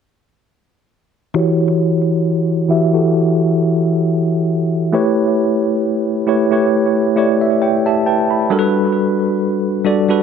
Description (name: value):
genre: R&B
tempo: 67 BPM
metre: 4/4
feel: swing 54% on 16ths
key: E dorian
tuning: A4 = 440 Hz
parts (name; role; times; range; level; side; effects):
- bell-like tine electric piano; solo; 1.3-10.2 s; E3 to B5; -13 LUFS; equal; medium stereo tremolo, low-pass filter, tape echo
room: moderate spring reverb, RT60 1.6 s, digital ambience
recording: echo-heavy mix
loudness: -13 LUFS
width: side -7 dB against mid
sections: 1.4-10.2 A section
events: filter sweep on tine electric piano 1.4-10.2; tine electric piano fill 6.7-8.5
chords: 1.4 Em69; 4.9 A9; 8.5 Gmaj9